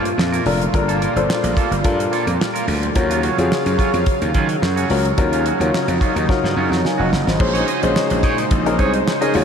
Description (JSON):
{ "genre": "early-eighties boogie funk", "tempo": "108 BPM", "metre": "4/4", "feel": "straight", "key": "unclear", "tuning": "A4 = 439 Hz", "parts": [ { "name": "brassy analog pad", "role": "sustained chords", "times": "0.0-9.4 s", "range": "Bb2 to F5", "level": "-24 LUFS", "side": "equal", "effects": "chorus" }, { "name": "clean electric guitar", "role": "riff", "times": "0.0-9.4 s", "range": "Gb3 to Eb5", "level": "-25 LUFS", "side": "right 4 dB", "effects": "lush chorus" }, { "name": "gritty slap bass", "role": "bass", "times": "0.0-9.4 s", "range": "F1 to Eb3", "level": "-21 LUFS", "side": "equal", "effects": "overdrive" }, { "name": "damped 70s drum kit", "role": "drums", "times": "0.1-9.4 s", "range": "crash cymbal, handclaps, hi-hat, kick drum, snare drum", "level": "-22 LUFS", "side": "right 1 dB", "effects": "none" }, { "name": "warm concert grand piano", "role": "accompaniment", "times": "0.5-9.4 s", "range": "Db4 to Ab5", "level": "-20 LUFS", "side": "left 2 dB", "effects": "none" } ], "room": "wet huge ambient reverb, RT60 7.8 s", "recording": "dreamy mix soaked in reverb", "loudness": "-15 LUFS", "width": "side -7 dB against mid", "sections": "0.0-7.4 A section; 7.4-9.4 B section", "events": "drum fill 6.3-7.4", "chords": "0.0 Gm9; 3.0 Ebm9; 7.4 Bbm11", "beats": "0.18 | 0.73 1.29 1.85 2.40 | 2.96 3.51 4.07 4.62 | 5.18 5.74 6.29 6.85 | 7.40 7.96 8.51 9.07" }